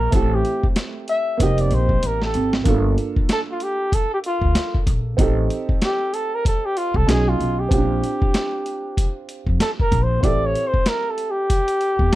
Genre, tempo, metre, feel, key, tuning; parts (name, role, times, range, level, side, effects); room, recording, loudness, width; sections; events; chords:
hip hop, jazz-hop; 95 BPM; 4/4; swing 60% on 16ths; G minor; A4 = 441 Hz
trumpet with bucket mute; melody; 0.0-12.2 s; F4 to E5; -22 LUFS; equal
dark upright piano; accompaniment; 0.0-12.2 s; F#3 to A4; -27 LUFS; right 5 dB
upright bass; bass; 0.0-12.1 s; F1 to F2; -20 LUFS; equal
boom bap sampler-style drum kit; drums; 0.1-12.2 s; hi-hat, kick drum, snare drum; -20 LUFS; equal
little or no reverb; dry, close 1970s-style studio recording; -18 LUFS; side -16 dB against mid
0.0-2.7 A section; 2.7-12.2 A section
muted trumpet solo 0.0-2.7, 2.7-12.2; drum fill 2.0-2.7; upright piano fill 11.8-12.2
0.1 Am7; 1.4 F9sus4; 2.7 Gm9 (rootless); 5.2 Am7b5; 7.1 B69; 7.7 Bb69; 10.2 Am7